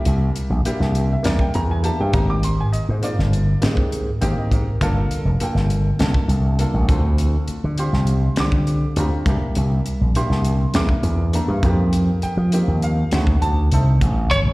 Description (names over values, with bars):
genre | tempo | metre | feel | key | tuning
electric jazz fusion | 101 BPM | 4/4 | straight | unclear | A4 = 444 Hz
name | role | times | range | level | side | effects
dark baby grand piano | accompaniment | 0.0-14.2 s | A3 to D6 | -26 LUFS | equal | plate reverb, slapback echo
slap bass with an envelope filter | bass | 0.1-14.5 s | F1 to F3 | -18 LUFS | equal | none
crisp fusion drum kit | drums | 0.1-14.5 s | hi-hat, kick drum, snare drum | -23 LUFS | equal | none
lightly driven lead guitar | melody | 14.3-14.4 s | C#5 | -18 LUFS | right 1 dB | plate reverb, slapback echo
room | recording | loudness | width
little or no reverb | live gig heard through the venue's PA, recital hall reverb | -17 LUFS | side -21 dB against mid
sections
0.0-14.3 A section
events
grand piano fill 3.9-4.8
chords
0.0 C9; 2.1 Abmaj9; 4.8 Gm9; 6.9 Dm7; 9.3 C9; 11.6 F9sus4; 13.1 D7b9